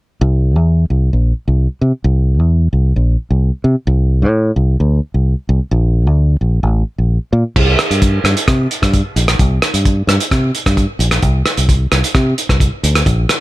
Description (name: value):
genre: highlife guitar band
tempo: 131 BPM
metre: 4/4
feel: straight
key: C mixolydian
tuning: A4 = 440 Hz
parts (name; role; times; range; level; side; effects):
- fingered electric bass; bass; 0.2-13.2 s; A1 to C3; -12 LUFS; equal; none
- cloth-damped thuddy drum kit; drums; 7.6-13.4 s; crash cymbal, hi-hat, kick drum, rim click; -14 LUFS; equal; none
room: little or no reverb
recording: none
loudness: -12 LUFS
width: side -18 dB against mid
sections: 0.2-7.6 A section; 7.6-13.4 B section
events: none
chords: none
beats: | 0.21 0.67 1.13 1.59 | 2.05 2.51 2.97 3.43 | 3.89 4.35 4.81 5.26 | 5.72 6.18 6.64 7.10 | 7.56 8.02 8.48 8.94 | 9.39 9.85 10.31 10.77 | 11.23 11.69 12.14 12.60 | 13.06